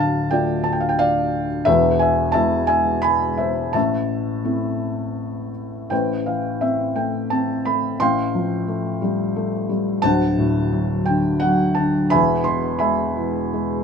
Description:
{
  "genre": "classical, lyrical solo piano",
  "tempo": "87 BPM",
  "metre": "3/4",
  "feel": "rubato",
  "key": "A minor",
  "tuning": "A4 = 443 Hz",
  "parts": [
    { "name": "felt-muted upright piano", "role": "solo", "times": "0.0-13.8 s", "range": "D1 to C6", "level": "-18 LUFS", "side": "equal", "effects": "none" }
  ],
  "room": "light reverb",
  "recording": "minimal, uncompressed stereo recording",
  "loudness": "-18 LUFS",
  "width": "side -6 dB against mid",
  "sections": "0.0-5.9 A section; 5.9-13.8 B section",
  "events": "none",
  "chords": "0.0 Dm; 1.7 E; 3.7 Am; 5.9 Amadd9; 8.0 Fadd9/A; 10.0 D7; 12.1 E"
}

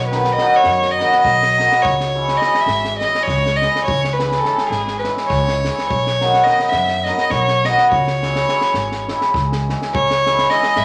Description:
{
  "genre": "balkan folk, Balkan wedding band",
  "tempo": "207 BPM (eighths)",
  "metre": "7/8",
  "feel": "straight",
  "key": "C# minor",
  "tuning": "A4 = 438 Hz",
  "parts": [
    { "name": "rich fiddle", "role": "melody", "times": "0.0-10.8 s", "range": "G#4 to E5", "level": "-20 LUFS", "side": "equal", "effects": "none" },
    { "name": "cimbalom", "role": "accompaniment", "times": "0.0-10.8 s", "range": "D#3 to E4", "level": "-20 LUFS", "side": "equal", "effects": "none" },
    { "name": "upright bass", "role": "bass", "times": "0.0-10.8 s", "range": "G#1 to F#2", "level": "-26 LUFS", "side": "equal", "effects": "none" },
    { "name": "compact cocktail drum kit", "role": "percussion", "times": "0.1-10.8 s", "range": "kick drum, snare drum", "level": "-30 LUFS", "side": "equal", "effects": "none" }
  ],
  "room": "moderate large studio reverb, RT60 0.9 s",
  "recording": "vinyl crackle",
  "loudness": "-17 LUFS",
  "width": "mono",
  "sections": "0.0-10.0 A section",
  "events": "none",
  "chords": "0.0 B; 1.8 C#m; 5.9 B; 7.9 C#m"
}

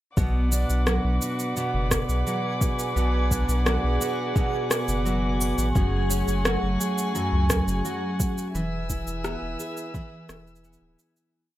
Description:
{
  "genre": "folktronica",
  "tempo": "86 BPM",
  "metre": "4/4",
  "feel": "straight",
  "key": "B dorian",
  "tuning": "A4 = 440 Hz",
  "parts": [
    { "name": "muted string quartet", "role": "sustained chords", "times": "0.2-11.3 s", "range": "A3 to E6", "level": "-32 LUFS", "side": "equal", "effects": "vintage 12-bit sampler grit" },
    { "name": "fingerpicked twelve-string acoustic guitar", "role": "arpeggios", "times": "0.2-11.6 s", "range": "F#2 to G#4", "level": "-28 LUFS", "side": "equal", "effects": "vintage 12-bit sampler grit, tape echo" },
    { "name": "warm sub bass", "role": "bass", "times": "0.2-11.0 s", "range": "D1 to C#2", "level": "-25 LUFS", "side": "equal", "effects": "none" },
    { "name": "electronic cabasa and rim click", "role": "drums", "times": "0.2-11.3 s", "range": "none", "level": "-28 LUFS", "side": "equal", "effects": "overdrive" },
    { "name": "electronic kick drum", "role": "drums", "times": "0.2-10.1 s", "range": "none", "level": "-26 LUFS", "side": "equal", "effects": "overdrive" },
    { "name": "backwards swelling texture", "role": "texture", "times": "1.8-11.3 s", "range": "G#4 to G#5", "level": "-34 LUFS", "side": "right 1 dB", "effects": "built-in reverb" }
  ],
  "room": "light reverb",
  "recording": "none",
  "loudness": "-22 LUFS",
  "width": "side -14 dB against mid",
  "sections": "0.2-11.3 groove",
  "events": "fade-out 7.6-11.3",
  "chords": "0.2 Bm; 5.8 F#madd9; 8.5 E"
}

